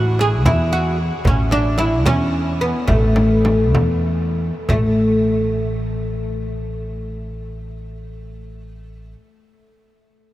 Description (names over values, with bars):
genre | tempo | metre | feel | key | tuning
Persian modal ensemble | 61-76 BPM (dotted quarters) | 6/8 | straight | A dastgah mahur | A4 = 439 Hz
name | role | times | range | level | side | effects
oud | melody | 0.0-9.1 s | A3 to G#4 | -20 LUFS | left 1 dB | none
upright bass | bass | 0.0-9.1 s | A1 to E2 | -20 LUFS | equal | none
frame drum | percussion | 0.2-5.0 s | none | -22 LUFS | right 1 dB | none
room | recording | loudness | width
moderate huge ambient reverb, RT60 7.8 s | in a vast, echoing space | -16 LUFS | side -15 dB against mid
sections
0.0-4.7 A section; 4.7-8.6 B section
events
slowing down 1.2-4.7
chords
none